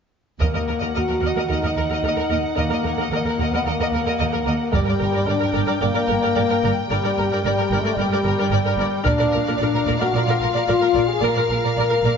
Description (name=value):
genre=cinematic, epic orchestral film score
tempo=111 BPM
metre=4/4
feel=straight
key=unclear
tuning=A4 = 440 Hz
part: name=warm symphonic violin section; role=melody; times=0.4-12.2 s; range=F5 to G5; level=-30 LUFS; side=left 4 dB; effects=none
part: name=warm symphonic violin section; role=second line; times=0.4-12.1 s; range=Bb4 to Eb5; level=-28 LUFS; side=left 1 dB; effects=none
part: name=rich symphonic viola section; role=accompaniment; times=0.4-12.1 s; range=Bb4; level=-27 LUFS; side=right 2 dB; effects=none
part: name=warm French horn section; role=sustained chords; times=0.4-12.2 s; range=G3 to Bb4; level=-22 LUFS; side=left 4 dB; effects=none
part: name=rich symphonic cello section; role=bass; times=0.4-12.1 s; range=Eb2 to Bb2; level=-26 LUFS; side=right 4 dB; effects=none
part: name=warm symphonic double bass section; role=bass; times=0.4-12.1 s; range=G1 to Eb2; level=-27 LUFS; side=right 4 dB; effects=none
part: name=taiko ensemble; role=drums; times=0.4-1.5, 4.7-5.8, 9.1-10.1 s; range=none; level=-26 LUFS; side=right 1 dB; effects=none
room=wet concert hall reverb, RT60 2.3 s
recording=nothing above 7.4 kHz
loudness=-18 LUFS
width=side -6 dB against mid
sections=0.4-12.2 A section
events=none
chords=0.4 Ebm; 4.7 Gm; 9.1 Bb